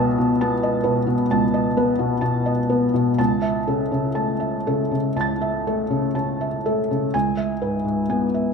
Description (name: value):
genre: neoclassical minimalist piano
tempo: 60-66 BPM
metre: 4/4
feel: rubato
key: unclear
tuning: A4 = 436 Hz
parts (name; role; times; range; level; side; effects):
- felt-muted upright piano; solo; 0.0-8.5 s; C#2 to A6; -19 LUFS; equal; none
room: moderate concert hall reverb, RT60 2.4 s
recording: minimal, uncompressed stereo recording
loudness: -19 LUFS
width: side -5 dB against mid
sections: 0.0-8.5 A section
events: none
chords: 0.0 B7/C#; 3.2 A/C#; 7.1 C#m7